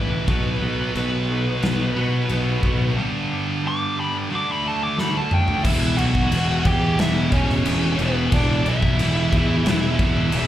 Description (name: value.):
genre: quiet-loud alternative rock.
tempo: 90 BPM.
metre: 4/4.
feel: straight.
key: E dorian from 5.7 s.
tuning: A4 = 439 Hz.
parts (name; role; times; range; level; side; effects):
dark smooth lead guitar; melody; 0.0-10.5 s; B3 to D6; -26 LUFS; equal; overdrive, slapback echo.
semi-hollow electric guitar; arpeggios; 0.0-5.6 s; E2 to G4; -30 LUFS; right 1 dB; slapback echo.
scooped high-gain guitar; riff; 0.0-10.5 s; E2 to D4; -24 LUFS; right 1 dB; distortion, slapback echo.
fuzz fingered electric bass; bass; 0.0-10.5 s; E1 to B2; -22 LUFS; equal; overdrive.
big rock drum kit; drums; 0.3-10.5 s; crash cymbal, kick drum, snare drum, toms; -24 LUFS; equal; none.
room: little or no reverb.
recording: live gig heard through the venue's PA, club reverb.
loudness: -18 LUFS.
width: side -12 dB against mid.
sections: 0.0-5.7 A section; 5.7-10.5 B section.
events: lead electric guitar solo 0.0-5.7; drum fill 5.0-5.7.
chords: 0.3 B; 3.0 G; 4.3 D; 5.7 E5.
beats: | 0.28 0.95 1.63 2.30 | 2.97 3.64 4.31 4.98 | 5.65 6.32 6.99 7.66 | 8.32 8.99 9.66 10.32.